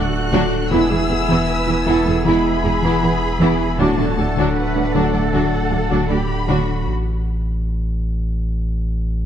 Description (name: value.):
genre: cinematic, hybrid orchestral and electronic film score.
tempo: 78 BPM.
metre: 4/4.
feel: straight.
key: unclear.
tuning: A4 = 441 Hz.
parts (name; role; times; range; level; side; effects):
warm symphonic violin section; melody; 0.0-6.9 s; F#5 to F#6; -26 LUFS; left 4 dB; none.
warm symphonic violin section; second line; 0.0-6.7 s; B3 to D5; -26 LUFS; left 4 dB; none.
warm symphonic viola section; accompaniment; 0.0-6.7 s; E3 to E4; -22 LUFS; right 3 dB; none.
chorused pulse-width pad; sustained chords; 0.0-6.9 s; A3 to G#5; -25 LUFS; equal; none.
thumb-piano-like synth pluck; arpeggios; 0.0-6.6 s; D3 to E4; -25 LUFS; left 3 dB; chorus, tape echo.
saturated sub bass; bass; 0.0-9.3 s; D1 to A1; -22 LUFS; equal; none.
warm studio double bass section; bass; 0.0-6.6 s; D2 to E2; -23 LUFS; right 3 dB; none.
warm symphonic cello section; bass; 0.0-6.9 s; F#4 to B4; -27 LUFS; right 4 dB; none.
mellow French horn section; sustained chords; 0.7-5.6 s; G#3 to F#4; -27 LUFS; left 4 dB; none.
room: moderate scoring stage reverb, RT60 1.9 s.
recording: dark, warm production.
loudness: -16 LUFS.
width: side -9 dB against mid.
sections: 0.0-9.3 A section.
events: break 6.9-9.3.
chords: 0.0 D; 0.7 E; 3.8 D; 6.9 N.C..